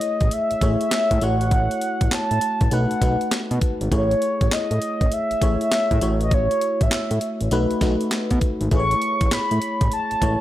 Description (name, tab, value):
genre	R&B, new jack swing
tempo	100 BPM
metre	4/4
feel	swing 65% on 16ths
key	unclear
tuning	A4 = 440 Hz
part	mellow horn-like synth lead	melody	0.0-10.4 s	C#5 to C#6	-23 LUFS	equal	chorus, ping-pong delay
part	FM electric piano	accompaniment	0.0-10.4 s	G#3 to C#5	-25 LUFS	left 1 dB	chorus
part	breakbeat sampler-style drum kit	drums	0.0-10.4 s	handclaps, hi-hat, kick drum, snare drum	-22 LUFS	equal	none
part	fat analog bass	bass	0.2-10.4 s	G#1 to B2	-23 LUFS	equal	none
room	light reverb, digital ambience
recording	none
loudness	-18 LUFS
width	side -13 dB against mid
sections	0.0-10.4 A section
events	none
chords	0.0 Amaj7; 1.2 F#m7/A; 2.7 B7; 3.9 Amaj7; 6.0 F#m7/A; 7.5 B7; 8.7 Amaj7